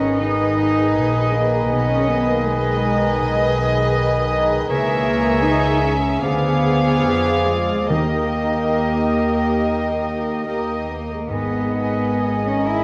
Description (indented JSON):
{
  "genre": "classical, slow romantic movement for symphony orchestra",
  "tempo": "68-83 BPM",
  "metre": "4/4",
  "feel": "rubato",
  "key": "G# minor",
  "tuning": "A4 = 440 Hz",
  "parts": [
    { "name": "warm symphonic violin section", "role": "melody", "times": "0.0-12.8 s", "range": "D#5 to F5", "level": "-28 LUFS", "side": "equal", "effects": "none" },
    { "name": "clear clarinet", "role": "second line", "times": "0.0-12.8 s", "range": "Ab4 to B4", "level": "-33 LUFS", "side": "equal", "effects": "none" },
    { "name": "dark studio violin section", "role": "second line", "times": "0.0-12.8 s", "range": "Ab4 to B4", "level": "-34 LUFS", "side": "equal", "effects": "none" },
    { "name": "mellow hollow concert flute", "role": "second line", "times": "0.0-12.8 s", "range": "G5 to G#5", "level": "-31 LUFS", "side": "equal", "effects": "none" },
    { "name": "warm oboe", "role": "second line", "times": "0.0-12.8 s", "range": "C#5 to D#5", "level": "-31 LUFS", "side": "equal", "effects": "none" },
    { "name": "dark symphonic viola section", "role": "accompaniment", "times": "0.0-12.8 s", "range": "G4 to G#4", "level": "-32 LUFS", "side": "equal", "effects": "none" },
    { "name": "mellow bassoon", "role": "accompaniment", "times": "0.0-12.8 s", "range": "D#3 to F3", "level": "-28 LUFS", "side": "equal", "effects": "none" },
    { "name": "mellow French horn section", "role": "sustained chords", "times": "0.0-12.8 s", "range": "G#3 to E4", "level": "-26 LUFS", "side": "equal", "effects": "none" },
    { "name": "concert harp", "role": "arpeggios", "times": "0.0-12.8 s", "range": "G#2 to A#4", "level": "-33 LUFS", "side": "equal", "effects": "none" },
    { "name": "warm symphonic cello section", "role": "bass", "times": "0.0-12.8 s", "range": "G#3 to E4", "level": "-30 LUFS", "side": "equal", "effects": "none" },
    { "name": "warm symphonic double bass section", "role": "bass", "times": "0.0-12.8 s", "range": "G#1 to F2", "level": "-27 LUFS", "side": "equal", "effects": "none" },
    { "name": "timpani", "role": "percussion", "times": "7.9-9.2 s", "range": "D#3", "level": "-30 LUFS", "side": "equal", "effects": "none" }
  ],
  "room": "moderate scoring stage reverb, RT60 1.5 s",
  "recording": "worn, warbling old tape, cassette tape, warbly pitch drift",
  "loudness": "-19 LUFS",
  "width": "mono",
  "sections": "0.0-12.8 A section",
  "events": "none",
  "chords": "0.0 G#m; 1.7 G#m/B; 4.7 A#m7b5/C#; 6.2 Ddim7; 7.9 D#; 11.3 G#m"
}